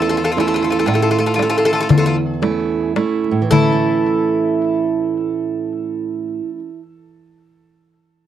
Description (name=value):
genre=greek folk, Greek bouzouki band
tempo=108-122 BPM (eighths)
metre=9/8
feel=straight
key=A major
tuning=A4 = 440 Hz
part: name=Greek bouzouki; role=melody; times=0.0-6.6 s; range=A4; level=-21 LUFS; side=left 2 dB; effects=tape echo
part: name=bowl-back mandolin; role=second line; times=0.0-6.6 s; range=E4 to F4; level=-23 LUFS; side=left 2 dB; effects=none
part: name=fingerpicked steel-string acoustic guitar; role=accompaniment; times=0.0-6.8 s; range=E2 to E4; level=-18 LUFS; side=right 6 dB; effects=none
part: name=darbuka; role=percussion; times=0.1-4.0 s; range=none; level=-17 LUFS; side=left 5 dB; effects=none
room=light reverb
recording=dry, close 1970s-style studio recording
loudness=-15 LUFS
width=side -10 dB against mid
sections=0.0-3.5 A section; 3.5-8.3 B section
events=slowing down 0.0-3.5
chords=0.0 A